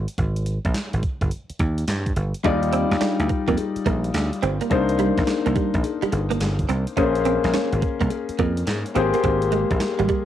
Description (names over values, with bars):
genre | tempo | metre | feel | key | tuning
R&B, new jack swing | 106 BPM | 4/4 | swing 66% on 16ths | Eb major | A4 = 440 Hz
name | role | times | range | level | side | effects
dry thumbed slap bass | bass | 0.0-10.1 s | G1 to Ab2 | -23 LUFS | right 1 dB | none
clean 12-bit digital drum machine | drums | 0.1-10.2 s | handclaps, hi-hat, kick drum, snare drum | -27 LUFS | right 1 dB | overdrive, cassette tape
warm concert grand piano | accompaniment | 2.4-10.2 s | G3 to D5 | -23 LUFS | left 6 dB | cassette tape
direct-recorded clean electric guitar | riff | 2.4-10.2 s | G3 to Eb4 | -26 LUFS | right 8 dB | ensemble chorus, cassette tape
cowbell | percussion | 2.4-10.0 s | none | -36 LUFS | left 7 dB | none
room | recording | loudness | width
moderate studio reverb, RT60 0.6 s | home recording on cassette | -20 LUFS | side -11 dB against mid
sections
0.0-10.2 A section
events
none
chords
0.0 Ab5; 2.4 Ebmaj9; 4.7 Cm9; 7.0 Bbm9; 9.0 Abmaj9